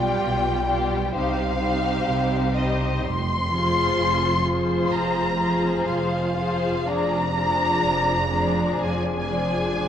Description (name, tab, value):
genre	classical, slow romantic movement for string orchestra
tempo	57-66 BPM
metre	4/4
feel	rubato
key	unclear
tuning	A4 = 440 Hz
part	rich studio violin section	melody	0.0-9.9 s	Eb5 to C6	-25 LUFS	left 2 dB	none
part	warm studio violin section	second line	0.0-9.9 s	G4 to D5	-29 LUFS	left 2 dB	none
part	warm studio viola section	accompaniment	0.0-9.9 s	F3 to F4	-27 LUFS	equal	none
part	rich studio double bass section	bass	0.0-9.9 s	F1 to C2	-29 LUFS	right 3 dB	none
part	warm studio cello section	bass	0.0-9.9 s	F2 to C3	-29 LUFS	right 2 dB	none
room	wet scoring stage reverb, RT60 1.9 s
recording	worn, warbling old tape, cassette tape, warbly pitch drift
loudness	-20 LUFS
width	side -9 dB against mid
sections	0.0-9.9 A section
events	none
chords	0.0 G7/B; 1.1 Cm; 3.0 Fm; 6.9 Ddim/F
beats	0.21 1.14 2.06 | 3.04 3.97 4.91 5.85 | 6.87 7.83 8.78 9.78